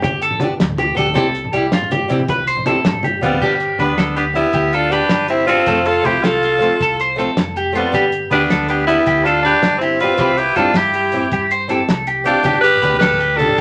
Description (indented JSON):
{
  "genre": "highlife guitar band",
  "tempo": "106 BPM (dotted quarters)",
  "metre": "12/8",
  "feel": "straight",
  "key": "G mixolydian",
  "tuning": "A4 = 441 Hz",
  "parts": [
    { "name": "clean electric guitar", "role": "arpeggios", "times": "0.0-13.6 s", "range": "F4 to C5", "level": "-22 LUFS", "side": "equal", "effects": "phaser" },
    { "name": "hollow-body short-scale fingered electric bass", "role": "bass", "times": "0.0-13.6 s", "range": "F1 to C3", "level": "-29 LUFS", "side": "equal", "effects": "none" },
    { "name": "cloth-damped thuddy drum kit", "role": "drums", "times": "0.0-13.6 s", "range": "crash cymbal, hi-hat, kick drum, snare drum", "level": "-23 LUFS", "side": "equal", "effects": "none" },
    { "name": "congas", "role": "percussion", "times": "0.0-3.4, 12.5-13.6 s", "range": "none", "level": "-27 LUFS", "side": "equal", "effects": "none" },
    { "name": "nylon-string guitar", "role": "accompaniment", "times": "0.4-13.5 s", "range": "E3 to G4", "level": "-24 LUFS", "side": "equal", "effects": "none" },
    { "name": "raspy alto saxophone", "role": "melody", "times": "3.2-13.6 s", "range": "B3 to B4", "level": "-19 LUFS", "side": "equal", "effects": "none" },
    { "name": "raspy tenor saxophone", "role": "second line", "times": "3.2-13.6 s", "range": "G3 to G4", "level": "-22 LUFS", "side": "equal", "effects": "none" }
  ],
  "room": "wet club reverb, RT60 0.8 s",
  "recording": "none",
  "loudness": "-16 LUFS",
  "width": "mono",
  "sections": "0.0-3.4 A section; 3.4-13.6 B section",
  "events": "none",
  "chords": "0.0 G; 1.2 C; 3.4 G; 5.7 F; 7.9 G; 10.2 C; 12.5 G",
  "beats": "0.03 0.59 | 1.16 1.72 2.28 2.85 | 3.41 3.98 4.54 5.11 | 5.67 6.24 6.80 7.37 | 7.93 8.50 9.06 9.63 | 10.19 10.76 11.32 11.89 | 12.45 13.02 13.58"
}